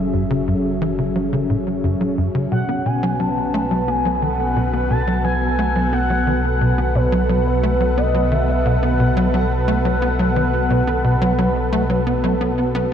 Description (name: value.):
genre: ambient, sequencer-driven space music.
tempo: 88 BPM.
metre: 4/4.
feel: straight.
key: unclear.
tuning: A4 = 443 Hz.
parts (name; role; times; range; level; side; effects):
sweeping resonant pad; sustained chords; 0.0-12.9 s; B2 to F#5; -21 LUFS; equal; chorus.
tight sequencer bass; riff; 0.0-12.9 s; F#2 to B3; -21 LUFS; equal; wide subtle chorus, tape echo.
warm sub bass; bass; 0.0-12.9 s; F#1 to B1; -23 LUFS; equal; none.
expressive synth lead; melody; 2.5-12.7 s; B4 to A5; -23 LUFS; equal; lush chorus, tape echo.
room: wet cathedral reverb, RT60 5.8 s.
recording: dreamy mix soaked in reverb, cassette tape.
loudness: -16 LUFS.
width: side -8 dB against mid.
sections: 0.0-12.9 A section.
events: filter sweep on analog synth bass 0.0-12.9.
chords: 0.0 F#m7; 2.5 B7(no3).